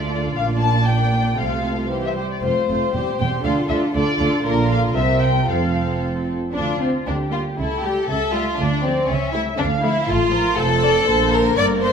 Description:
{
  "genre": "quick classical-period movement for string orchestra",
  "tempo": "119 BPM",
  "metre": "2/4",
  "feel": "rubato",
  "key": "F major, D minor from 6.6 s",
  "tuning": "A4 = 436 Hz",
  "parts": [
    { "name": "dark studio violin section", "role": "melody", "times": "0.0-11.9 s", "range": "F4 to A5", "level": "-24 LUFS", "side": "left 4 dB", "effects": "none" },
    { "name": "rich studio violin section", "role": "second line", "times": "0.0-11.9 s", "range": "C4 to D5", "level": "-21 LUFS", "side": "left 2 dB", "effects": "none" },
    { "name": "dark studio viola section", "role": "accompaniment", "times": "0.0-11.9 s", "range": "D3 to D4", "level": "-26 LUFS", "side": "right 2 dB", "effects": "none" },
    { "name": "dark studio cello section", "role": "bass", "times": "0.0-11.9 s", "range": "D2 to D3", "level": "-26 LUFS", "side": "right 3 dB", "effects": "none" },
    { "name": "dark studio double bass section", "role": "bass", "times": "0.0-11.9 s", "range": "E1 to D2", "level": "-24 LUFS", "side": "right 3 dB", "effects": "none" }
  ],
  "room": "wet recital hall reverb, RT60 1.3 s",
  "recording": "none",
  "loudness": "-17 LUFS",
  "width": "side -7 dB against mid",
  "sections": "0.0-6.6 A section; 6.6-11.9 B section",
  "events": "none",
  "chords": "0.4 Bb; 1.4 F/C; 1.9 C; 2.4 F; 3.0 C; 3.5 Dm; 4.5 Bb; 5.0 C7; 5.5 F; 6.6 Dm; 7.1 Dsus4; 7.6 A7/C#; 8.6 Dm; 9.1 A7/C#; 9.6 Dm; 10.6 F; 11.1 Bb",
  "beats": "| 0.36 0.87 | 1.38 1.91 | 2.44 2.95 | 3.46 3.95 | 4.46 4.96 | 5.49 6.03 | 6.55 7.07 | 7.59 8.10 | 8.60 9.10 | 9.60 10.09 | 10.58 11.07 | 11.57"
}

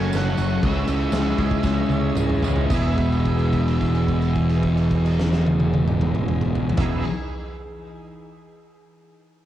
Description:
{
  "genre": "rock, shoegaze and dream pop",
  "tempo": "109-125 BPM",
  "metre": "4/4",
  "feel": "straight",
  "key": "E major",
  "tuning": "A4 = 441 Hz",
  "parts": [
    { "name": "octave-fuzz lead guitar", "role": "melody", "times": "0.0-7.0 s", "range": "E5 to G#5", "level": "-35 LUFS", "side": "right 2 dB", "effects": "distortion, cassette tape, plate reverb, tape echo" },
    { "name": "soft additive organ-like pad", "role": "sustained chords", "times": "0.0-7.0 s", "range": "E3 to C#6", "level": "-34 LUFS", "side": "right 2 dB", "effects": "ensemble chorus, built-in reverb" },
    { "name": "twangy electric guitar", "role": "arpeggios", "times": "0.0-7.0 s", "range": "E3 to G#4", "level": "-37 LUFS", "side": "right 10 dB", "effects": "ensemble chorus, plate reverb, tape echo" },
    { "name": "overdriven electric guitar", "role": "riff", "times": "0.0-7.0 s", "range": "E2 to F#4", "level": "-28 LUFS", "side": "right 10 dB", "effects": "reverse reverb" },
    { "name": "thick fuzz guitar", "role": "riff", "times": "0.0-7.0 s", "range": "E2 to C#4", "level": "-22 LUFS", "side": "left 3 dB", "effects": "distortion, analog chorus" },
    { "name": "modern bright picked electric bass", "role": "bass", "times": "0.0-7.0 s", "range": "E1 to C#2", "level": "-25 LUFS", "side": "right 1 dB", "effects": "tube saturation" },
    { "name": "huge arena drum kit", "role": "drums", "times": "0.1-6.9 s", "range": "crash cymbal, kick drum, snare drum, toms", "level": "-26 LUFS", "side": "right 1 dB", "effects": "cassette tape" },
    { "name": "tambourine", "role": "percussion", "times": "0.1-3.0 s", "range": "none", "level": "-42 LUFS", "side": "right 14 dB", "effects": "none" }
  ],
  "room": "light reverb",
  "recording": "home recording on cassette",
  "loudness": "-18 LUFS",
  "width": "side -12 dB against mid",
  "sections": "0.0-2.7 A section; 2.7-7.1 B section",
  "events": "slowing down 0.0-2.7; drum fill 1.6-2.7; held note 2.7-6.8",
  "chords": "0.0 F#m; 0.6 C#m; 2.7 E",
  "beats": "0.15 | 0.63 1.13 1.64 2.17 | 2.71 3.26 3.81 4.36 | 4.91 5.46 6.01 6.56"
}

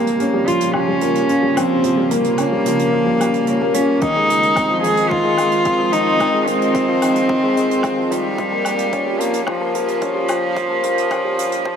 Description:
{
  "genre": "piano and strings electronica",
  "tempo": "110 BPM",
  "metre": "4/4",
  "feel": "straight",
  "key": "unclear",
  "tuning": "A4 = 442 Hz",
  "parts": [
    { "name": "rich cello", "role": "melody", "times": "0.0-11.8 s", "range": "F3 to Ab4", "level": "-17 LUFS", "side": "equal", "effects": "low-pass filter" },
    { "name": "granular cloud pad", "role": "sustained chords", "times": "0.0-11.8 s", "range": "Db3 to F4", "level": "-25 LUFS", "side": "right 2 dB", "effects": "built-in reverb, sidechain pumping" },
    { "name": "felt-muted upright piano", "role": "riff", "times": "0.0-11.8 s", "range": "Eb3 to Db4", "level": "-20 LUFS", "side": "left 2 dB", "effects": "none" },
    { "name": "hi-hat and woodblock", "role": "drums", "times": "0.1-11.6 s", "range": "none", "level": "-28 LUFS", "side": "left 1 dB", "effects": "high-pass filter on hats, high-pass filter on perc, high-pass filter on room" },
    { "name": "electronic kick drum", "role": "drums", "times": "4.0-11.8 s", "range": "none", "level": "-29 LUFS", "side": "equal", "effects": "overdrive" }
  ],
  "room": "wet huge ambient reverb, RT60 4.8 s",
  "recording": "high-pass filter",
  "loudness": "-15 LUFS",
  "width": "side -7 dB against mid",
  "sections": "0.0-11.8 A section",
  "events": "build-up 0.0-11.8; filter sweep on cello 0.0-11.8",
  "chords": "0.0 Gm7b5; 4.0 Fm7; 8.4 Gm7b5",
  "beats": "0.20 0.75 1.29 | 1.84 2.38 2.93 3.48 | 4.02 4.57 5.11 5.66 | 6.20 6.75 7.29 7.84 | 8.38 8.93 9.47 10.02 | 10.57 11.11 11.66"
}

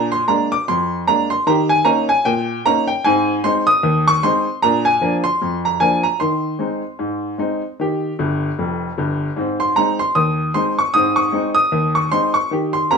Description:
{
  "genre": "ragtime piano",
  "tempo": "76 BPM",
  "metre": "2/4",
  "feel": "swing 58% on 16ths",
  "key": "Ab major",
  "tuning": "A4 = 439 Hz",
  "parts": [
    { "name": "clear upright piano", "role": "solo", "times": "0.0-13.0 s", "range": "F1 to Eb6", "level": "-15 LUFS", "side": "equal", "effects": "none" }
  ],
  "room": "wet studio reverb, RT60 0.6 s",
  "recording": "band playing live in one room",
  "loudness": "-15 LUFS",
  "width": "side -5 dB against mid",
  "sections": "0.0-13.0 A section",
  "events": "upright piano fill 8.2-9.4",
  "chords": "0.0 Bb7; 1.5 Eb7; 3.0 Ab; 4.6 Bb; 6.2 Ab/Eb; 7.8 Eb; 9.4 Ab",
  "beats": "0.68 | 1.47 2.25 | 3.04 3.83 | 4.62 5.41 | 6.20 6.99 | 7.78 8.58 | 9.37 10.16 | 10.95 11.74 | 12.53"
}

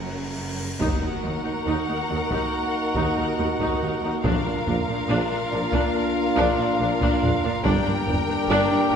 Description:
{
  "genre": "cinematic, epic orchestral film score",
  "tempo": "70 BPM",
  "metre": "4/4",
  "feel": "straight",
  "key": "unclear",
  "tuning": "A4 = 440 Hz",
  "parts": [
    { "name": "rich symphonic violin section", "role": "melody", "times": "0.0-9.0 s", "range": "F5 to G5", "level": "-32 LUFS", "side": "left 3 dB", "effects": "none" },
    { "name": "dark symphonic violin section", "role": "second line", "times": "0.0-9.0 s", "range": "Bb4", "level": "-31 LUFS", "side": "left 2 dB", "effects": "none" },
    { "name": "rich symphonic viola section", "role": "accompaniment", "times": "0.0-9.0 s", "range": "Db4 to Eb4", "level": "-29 LUFS", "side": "left 1 dB", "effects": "none" },
    { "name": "rich symphonic cello section", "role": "bass", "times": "0.0-9.0 s", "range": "Eb2 to Bb2", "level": "-30 LUFS", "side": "right 3 dB", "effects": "none" },
    { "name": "rich symphonic double bass section", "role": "bass", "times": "0.0-9.0 s", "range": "Gb1 to Eb2", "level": "-33 LUFS", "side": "right 2 dB", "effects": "none" },
    { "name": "cymbal swell and impact", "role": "sound effects", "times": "0.0-4.2 s", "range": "none", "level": "-36 LUFS", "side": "left 1 dB", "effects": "none" },
    { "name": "mellow French horn section", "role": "sustained chords", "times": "0.8-9.0 s", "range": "Bb3 to Eb4", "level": "-29 LUFS", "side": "left 3 dB", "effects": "none" },
    { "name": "dark trumpet section", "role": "stabs", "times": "0.8-9.0 s", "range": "F4 to G4", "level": "-28 LUFS", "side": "right 2 dB", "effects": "none" },
    { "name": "warm tuba", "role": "bass", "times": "0.8-9.0 s", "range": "G1 to Eb2", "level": "-31 LUFS", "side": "right 2 dB", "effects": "none" },
    { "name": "taiko ensemble", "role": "drums", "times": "0.8-8.5 s", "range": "none", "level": "-30 LUFS", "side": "left 1 dB", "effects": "none" },
    { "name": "timpani", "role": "percussion", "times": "4.3-5.5 s", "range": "Bb2", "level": "-31 LUFS", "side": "left 1 dB", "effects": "none" }
  ],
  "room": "wet scoring stage reverb, RT60 2.0 s",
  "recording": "heard from further back in the room",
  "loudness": "-21 LUFS",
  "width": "side -7 dB against mid",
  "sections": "0.8-9.0 A section",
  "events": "cymbal swell 0.0-0.8; impact 0.8-4.2",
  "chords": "0.0 Gb; 0.8 Ebm; 4.2 Bb; 7.6 Gm",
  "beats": "| 0.80 1.67 2.53 3.38 | 4.24 5.10 5.95 6.80 | 7.65 8.50"
}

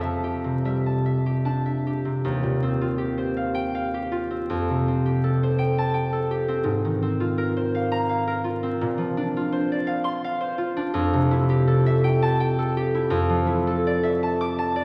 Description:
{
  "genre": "classical, solo harp piece",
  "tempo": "83 BPM",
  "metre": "3/4",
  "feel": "uneven beats, rubato",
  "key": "F major",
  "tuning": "A4 = 440 Hz",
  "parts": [
    { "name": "concert harp", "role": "solo", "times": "0.0-14.8 s", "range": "Eb2 to D6", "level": "-24 LUFS", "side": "equal", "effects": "none" }
  ],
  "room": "wet scoring stage reverb, RT60 2.1 s",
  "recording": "vinyl crackle",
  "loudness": "-24 LUFS",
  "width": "mono",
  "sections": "0.0-2.2 A section; 2.2-14.8 B section",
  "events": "none",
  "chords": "0.0 Fmaj9; 2.2 Eb69; 4.5 Fadd9; 6.7 Ab69; 8.8 Bbadd9; 10.9 Fmaj9; 13.1 Dmadd9/F",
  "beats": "0.63 1.43 | 2.23 2.97 3.71 | 4.47 5.20 5.93 | 6.65 7.36 8.07 | 8.79 9.50 10.22 | 10.94 11.64 12.36 | 13.08 13.81 14.54"
}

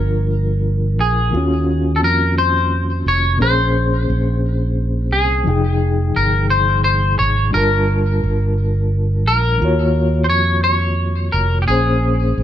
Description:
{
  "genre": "slow six-eight R&B",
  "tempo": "58 BPM (dotted quarters)",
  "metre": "6/8",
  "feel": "straight",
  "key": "unclear",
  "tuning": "A4 = 440 Hz",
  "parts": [
    { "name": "semi-hollow electric guitar", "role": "melody", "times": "0.0-12.4 s", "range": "G4 to Db5", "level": "-19 LUFS", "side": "left 2 dB", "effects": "wide subtle chorus, digital delay" },
    { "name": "reed electric piano", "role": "accompaniment", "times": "0.0-12.4 s", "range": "Bb2 to A5", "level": "-21 LUFS", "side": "left 2 dB", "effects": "fast tremolo" },
    { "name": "mellow fretless electric bass", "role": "bass", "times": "0.0-12.4 s", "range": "F1 to F2", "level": "-17 LUFS", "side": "right 1 dB", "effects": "none" }
  ],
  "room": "little or no reverb",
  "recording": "none",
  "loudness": "-14 LUFS",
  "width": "side -11 dB against mid",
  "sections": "0.0-12.4 A section",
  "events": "none",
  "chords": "0.0 Gm7; 1.3 Ebm9; 3.4 Bbm9; 5.5 Fm9; 7.5 Gm9; 9.6 Ebm9; 11.7 Bbm9",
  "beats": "0.29 | 1.32 2.36 | 3.39 4.43 | 5.46 6.50 | 7.53 8.56 | 9.60 10.63 | 11.67"
}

